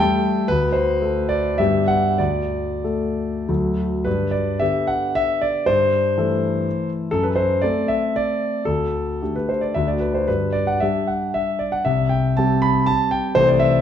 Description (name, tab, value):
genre	classical, romantic triple-time dance for piano with dotted rhythms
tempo	88-132 BPM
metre	3/4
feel	rubato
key	G major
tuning	A4 = 440 Hz
part	warm concert grand piano	solo	0.0-13.8 s	C2 to B5	-18 LUFS	left 1 dB	none
room	wet recital hall reverb, RT60 1.5 s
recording	dark, warm production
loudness	-18 LUFS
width	side -9 dB against mid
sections	0.0-4.1 A section; 4.1-13.8 B section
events	none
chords	0.0 A5; 0.5 D5; 1.6 G; 2.2 D5; 3.5 D; 4.1 G; 5.7 Am7/G; 7.1 D7/F#; 8.7 Dsus4; 9.8 D; 10.3 G5; 11.9 C5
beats	0.00 | 0.50 1.02 1.59 | 2.19 2.85 3.49 | 4.06 4.60 5.16 | 5.67 6.17 6.66 | 7.12 7.62 8.15 | 8.66 9.20 9.75 | 10.27 10.81 11.36 | 11.85 12.37 12.88 | 13.36